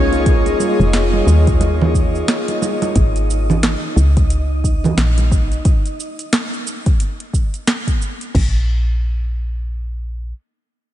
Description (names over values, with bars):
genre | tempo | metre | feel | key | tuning
organic downtempo | 89 BPM | 4/4 | swing 60% on 16ths | unclear | A4 = 440 Hz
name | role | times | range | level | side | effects
airy breathy pad | sustained chords | 0.0-3.0 s | Bb3 to Eb5 | -20 LUFS | left 2 dB | chorus, sidechain pumping
woody FM bass | bass | 0.0-10.3 s | F1 to Eb2 | -16 LUFS | equal | sidechain pumping
wind-like tuned noise texture | texture | 0.0-5.7 s | Eb4 to Eb5 | -27 LUFS | right 2 dB | built-in reverb
afro-pop drum kit | drums | 0.1-8.5 s | crash cymbal, hi-hat, shaker, snare drum | -22 LUFS | right 1 dB | small room ambience
electronic kick drum | drums | 0.3-8.5 s | none | -16 LUFS | equal | small room ambience
congas | percussion | 0.5-5.3 s | none | -23 LUFS | right 4 dB | none
room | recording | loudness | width
light reverb | nothing above 10.3 kHz | -14 LUFS | side -13 dB against mid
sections
0.0-8.3 A section; 8.3-10.9 B section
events
none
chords
0.0 Bbm11; 3.0 Absus4; 8.3 N.C.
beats
| 0.26 0.93 1.61 2.28 | 2.95 3.63 4.30 4.98 | 5.65 6.33 7.00 7.67 | 8.35 9.02 9.70